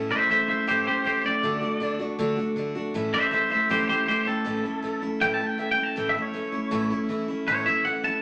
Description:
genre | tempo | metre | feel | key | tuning
rock | 159 BPM | 4/4 | straight | A major | A4 = 439 Hz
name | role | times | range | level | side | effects
picked steel-string acoustic guitar | accompaniment | 0.0-8.2 s | A2 to F#4 | -30 LUFS | equal | none
twangy electric guitar | melody | 0.1-8.2 s | G4 to A5 | -26 LUFS | equal | spring reverb
room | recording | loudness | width
moderate club reverb, RT60 0.6 s | none | -25 LUFS | mono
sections
0.0-8.2 A section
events
none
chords
0.0 A; 1.4 D; 2.9 A

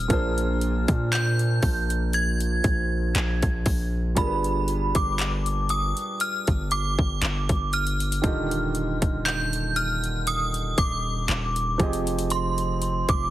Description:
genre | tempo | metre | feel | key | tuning
contemporary R&B | 59 BPM | 4/4 | swing 54% on 16ths | unclear | A4 = 440 Hz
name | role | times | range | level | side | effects
synth chime | melody | 0.0-13.3 s | B5 to Ab6 | -28 LUFS | right 1 dB | ensemble chorus, phaser, ping-pong delay
felt-muted upright piano | accompaniment | 0.0-13.3 s | Bb2 to Eb5 | -30 LUFS | right 3 dB | none
long sustained 808-style bass | bass | 0.0-13.3 s | Eb1 to Bb2 | -26 LUFS | equal | none
trap drum kit | drums | 0.1-13.3 s | handclaps, hi-hat, kick drum | -26 LUFS | equal | overdrive
room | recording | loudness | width
digital ambience | heavily compressed radio sound, multiband compression | -22 LUFS | side -14 dB against mid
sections
0.0-13.3 A section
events
none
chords
0.1 Bb7; 4.2 G7b9; 8.2 Ebmaj9; 11.8 Fm7

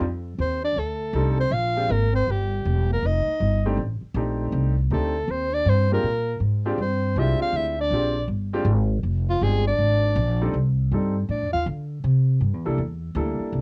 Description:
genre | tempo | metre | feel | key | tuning
jazz | 160 BPM | 4/4 | swing 64% on 8ths | F major | A4 = 440 Hz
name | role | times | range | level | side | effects
upright bass | bass | 0.0-13.6 s | E1 to D3 | -25 LUFS | equal | none
breathy soprano saxophone | melody | 0.4-11.7 s | F4 to F5 | -27 LUFS | equal | cassette tape
mellow trombone | second line | 0.4-11.7 s | F3 to F4 | -35 LUFS | equal | cassette tape
clear upright piano | accompaniment | 1.2-13.6 s | G3 to A4 | -30 LUFS | equal | cassette tape
room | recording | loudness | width
little or no reverb | home recording on cassette | -23 LUFS | mono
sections
0.0-13.6 A section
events
none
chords
0.0 F13; 1.5 Bb7sus2; 3.0 F13; 12.0 C13

